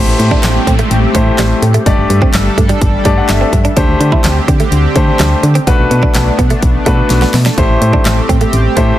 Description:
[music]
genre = dance-pop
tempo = 126 BPM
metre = 4/4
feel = straight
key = A dorian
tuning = A4 = 440 Hz
[part]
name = clear baby grand piano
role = accompaniment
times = 0.0-9.0 s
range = A3 to A5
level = -16 LUFS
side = left 3 dB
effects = sidechain pumping
[part]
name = chorused pulse-width pad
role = sustained chords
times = 0.0-9.0 s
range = D3 to A4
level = -19 LUFS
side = equal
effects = sidechain pumping
[part]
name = direct-recorded clean electric guitar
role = riff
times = 0.0-8.8 s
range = G3 to E4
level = -20 LUFS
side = right 6 dB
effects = lush chorus
[part]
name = solid FM bass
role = bass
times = 0.0-8.9 s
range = G1 to D3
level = -13 LUFS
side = equal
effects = sidechain pumping
[part]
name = downlifter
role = sound effects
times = 0.0-3.8 s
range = none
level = -24 LUFS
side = right 3 dB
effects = none
[part]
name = pop drum kit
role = drums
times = 0.2-8.9 s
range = handclaps, hi-hat, kick drum, snare drum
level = -13 LUFS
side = equal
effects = none
[sound]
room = digital ambience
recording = dense, heavily limited modern master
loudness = -8 LUFS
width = side -13 dB against mid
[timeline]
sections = 0.0-9.0 A section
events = grand piano fill 2.8-3.8; drum fill 7.1-7.6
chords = 0.0 Am7; 1.9 Gsus2; 3.8 D7sus4; 5.7 Bm7; 7.6 Am7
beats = 0.43 0.91 1.39 | 1.86 2.34 2.81 3.29 | 3.77 4.24 4.72 5.20 | 5.67 6.15 6.62 7.10 | 7.58 8.05 8.53

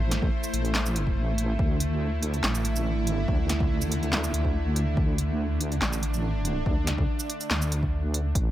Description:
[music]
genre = deep dubstep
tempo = 142 BPM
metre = 4/4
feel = half-time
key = unclear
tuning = A4 = 444 Hz
[part]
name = bowed-like drone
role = sustained chords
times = 0.0-8.3 s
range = D3 to C5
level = -31 LUFS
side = right 1 dB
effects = built-in reverb
[part]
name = deep soft wobble bass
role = bass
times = 0.0-8.5 s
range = A1 to D2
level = -27 LUFS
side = equal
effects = chorus
[part]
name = deep house drum kit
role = drums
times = 0.1-8.4 s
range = handclaps, hi-hat, shaker, snare drum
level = -29 LUFS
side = equal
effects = none
[part]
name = electronic kick drum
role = drums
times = 0.2-8.4 s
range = none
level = -27 LUFS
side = equal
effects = none
[sound]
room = little or no reverb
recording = none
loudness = -24 LUFS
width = side -13 dB against mid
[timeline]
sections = 0.0-8.4 A section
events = drop 0.0-8.4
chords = 0.0 Am; 1.6 Dsus2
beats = 0.32 0.75 1.17 | 1.59 2.01 2.44 2.86 | 3.28 3.70 4.13 4.55 | 4.97 5.39 5.82 6.24 | 6.66 7.08 7.51 7.93 | 8.35

